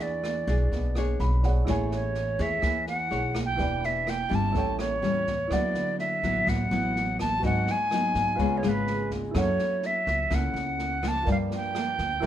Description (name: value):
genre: bossa nova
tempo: 125 BPM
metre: 4/4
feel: straight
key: A major, D major from 5.5 s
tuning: A4 = 440 Hz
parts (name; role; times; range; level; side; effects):
- reedy silver concert flute; melody; 0.0-12.3 s; B4 to A5; -28 LUFS; right 1 dB; none
- nylon-string guitar; accompaniment; 0.0-12.3 s; G2 to C#5; -31 LUFS; left 3 dB; none
- warm concert grand piano; accompaniment; 0.0-12.3 s; D4 to C#6; -36 LUFS; right 4 dB; none
- upright bass; bass; 0.0-12.3 s; E1 to G#2; -30 LUFS; equal; none
- open jazz drum kit; drums; 0.2-12.3 s; kick drum, rim click, snare drum; -33 LUFS; right 1 dB; none
room: moderate studio reverb, RT60 0.8 s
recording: band playing live in one room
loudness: -24 LUFS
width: side -11 dB against mid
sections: 0.0-5.5 A section; 5.5-12.3 B section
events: grand piano fill 0.9-1.7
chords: 0.0 E13; 1.7 Amaj7; 3.6 Em7; 4.5 A7; 5.5 D69; 7.4 G#m7; 8.4 C#7; 9.3 F#m7; 11.3 Gm7